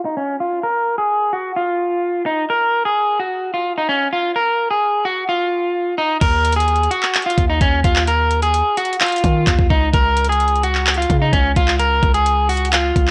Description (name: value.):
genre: hip hop, trap.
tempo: 129 BPM.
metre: 4/4.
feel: half-time.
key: unclear.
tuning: A4 = 441 Hz.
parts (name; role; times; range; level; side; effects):
electric guitar at the edge of break-up; melody; 0.1-13.1 s; Db4 to Bb4; -19 LUFS; equal; vibrato effect, low-pass filter.
long sustained 808-style bass; bass; 6.2-13.1 s; Db2 to Eb3; -21 LUFS; equal; none.
trap drum kit; drums; 6.2-13.1 s; crash cymbal, handclaps, hi-hat, kick drum; -21 LUFS; equal; vintage 12-bit sampler grit.
room: digital ambience.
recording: dry, gritty hardware recording, cassette tape.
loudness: -17 LUFS.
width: mono.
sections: 0.0-6.2 A section; 6.2-13.1 B section.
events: filter sweep on clean electric guitar 0.0-6.2.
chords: 0.0 N.C.; 6.2 Dbadd9 (rootless); 9.9 Db.